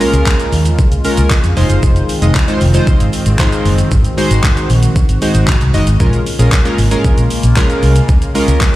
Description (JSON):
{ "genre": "dance-pop", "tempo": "115 BPM", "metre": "4/4", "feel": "straight", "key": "Bb minor", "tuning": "A4 = 441 Hz", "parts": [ { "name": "chorused retro synth keys", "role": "accompaniment", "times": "0.0-8.8 s", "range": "Ab3 to Eb5", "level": "-17 LUFS", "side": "equal", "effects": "sidechain pumping" }, { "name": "sweeping resonant pad", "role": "sustained chords", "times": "0.0-8.8 s", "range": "Db3 to Gb4", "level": "-20 LUFS", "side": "equal", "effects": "chorus, sidechain pumping" }, { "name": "pop drum kit", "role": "drums", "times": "0.0-8.7 s", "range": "handclaps, hi-hat, kick drum, shaker", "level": "-14 LUFS", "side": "equal", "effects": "overdrive" }, { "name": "downlifter", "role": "sound effects", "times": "0.0-1.8 s", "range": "none", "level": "barely audible", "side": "none", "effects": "none" }, { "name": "vintage muted fingered electric bass", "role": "bass", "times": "0.1-8.6 s", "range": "F1 to F2", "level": "-12 LUFS", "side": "equal", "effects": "sidechain pumping" } ], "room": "light reverb", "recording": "played on a big sound system in a bare room, large studio reverb", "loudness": "-10 LUFS", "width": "side -16 dB against mid", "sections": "0.0-8.8 A section", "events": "none", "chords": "0.0 Db6; 1.6 Fm7; 3.9 Ab7; 6.0 Bbm7; 8.1 Db6", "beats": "0.26 0.79 1.31 | 1.83 2.35 2.87 3.39 | 3.92 4.44 4.96 5.48 | 6.00 6.52 7.05 7.57 | 8.09 8.61" }